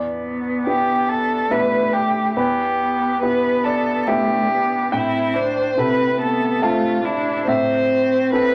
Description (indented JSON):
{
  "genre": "neoclassical piano and strings",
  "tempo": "70 BPM",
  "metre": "3/4",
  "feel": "rubato",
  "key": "unclear",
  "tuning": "A4 = 440 Hz",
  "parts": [
    { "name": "muted cello", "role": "second line", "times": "0.0-8.5 s", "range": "A3 to D4", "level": "-26 LUFS", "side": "equal", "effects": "none" },
    { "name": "clear upright piano", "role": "accompaniment", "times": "0.0-8.5 s", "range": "E2 to A5", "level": "-26 LUFS", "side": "equal", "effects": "none" },
    { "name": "muted violin", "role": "melody", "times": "0.7-8.5 s", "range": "E4 to C5", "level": "-22 LUFS", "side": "equal", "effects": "none" }
  ],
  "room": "wet studio ambience, RT60 0.5 s",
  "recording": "vinyl crackle",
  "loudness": "-19 LUFS",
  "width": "mono",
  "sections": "0.0-8.5 A section",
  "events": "none",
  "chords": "0.0 Em; 4.9 Am",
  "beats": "0.65 1.50 | 2.36 3.21 4.07 | 4.92 5.77 6.62 | 7.47 8.32"
}